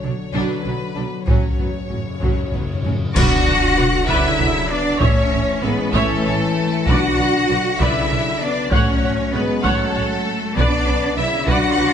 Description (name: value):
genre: cinematic, epic orchestral film score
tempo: 65 BPM (dotted quarters)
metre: 6/8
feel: straight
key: B minor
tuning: A4 = 441 Hz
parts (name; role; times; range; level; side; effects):
- rich studio violin section; melody; 0.0-11.9 s; A4 to F#5; -26 LUFS; left 4 dB; none
- warm symphonic violin section; second line; 0.0-11.9 s; B3 to F#5; -26 LUFS; left 2 dB; none
- warm symphonic viola section; accompaniment; 0.0-11.9 s; F#3 to F#5; -26 LUFS; right 1 dB; none
- dark French horn section; sustained chords; 0.0-11.9 s; C#3 to D4; -24 LUFS; left 4 dB; none
- warm symphonic cello section; bass; 0.0-11.9 s; A2 to F#4; -22 LUFS; right 1 dB; none
- warm symphonic double bass section; bass; 0.0-11.9 s; A1 to B1; -25 LUFS; right 4 dB; none
- taiko ensemble; drums; 1.3-11.9 s; none; -22 LUFS; equal; none
- timpani; percussion; 1.3-4.0, 6.9-7.8, 10.6-11.4 s; F#2 to B2; -28 LUFS; left 2 dB; none
- mellow trombone section; sustained chords; 3.2-11.9 s; D3 to C#4; -29 LUFS; right 4 dB; none
- clash cymbals and concert bass drum; percussion; 3.2-4.4 s; none; -26 LUFS; equal; none
room: moderate concert hall reverb, RT60 1.9 s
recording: nothing above 10.3 kHz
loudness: -16 LUFS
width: side -8 dB against mid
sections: 0.0-3.2 A section; 3.2-11.9 B section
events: timpani fill 1.3-3.2; band accent 3.2-3.8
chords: 0.0 Bm; 1.3 F#m/A; 3.2 Bm; 5.0 A; 6.9 Bm; 8.7 F#m/A; 10.6 Bm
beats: 0.34 | 1.28 2.22 | 3.16 4.08 | 5.01 5.93 | 6.87 7.79 | 8.72 9.64 | 10.57 11.48